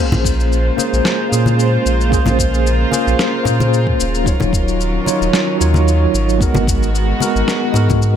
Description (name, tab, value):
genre	sunset chillout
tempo	112 BPM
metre	4/4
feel	swing 53% on 16ths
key	Bb minor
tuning	A4 = 440 Hz
part	tine electric piano	accompaniment	0.0-8.2 s	Gb3 to Db5	-18 LUFS	moving between left 6 dB and right 6 dB	medium stereo tremolo, auto-pan, tape echo
part	dark chamber string section	sustained chords	0.0-8.2 s	Db3 to C5	-22 LUFS	right 1 dB	none
part	warm sub bass	bass	0.1-8.2 s	Eb1 to Bb2	-16 LUFS	equal	none
part	electronic shaker and snare drum	drums	0.1-8.1 s	none	-22 LUFS	left 2 dB	none
part	congas	percussion	0.1-8.0 s	none	-19 LUFS	left 2 dB	none
part	electronic kick drum	drums	0.2-8.0 s	none	-19 LUFS	equal	none
room	light reverb, digital ambience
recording	none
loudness	-13 LUFS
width	side -9 dB against mid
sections	0.0-8.2 A section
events	none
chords	0.0 Bbm9; 4.3 Ebm9; 6.4 Abm9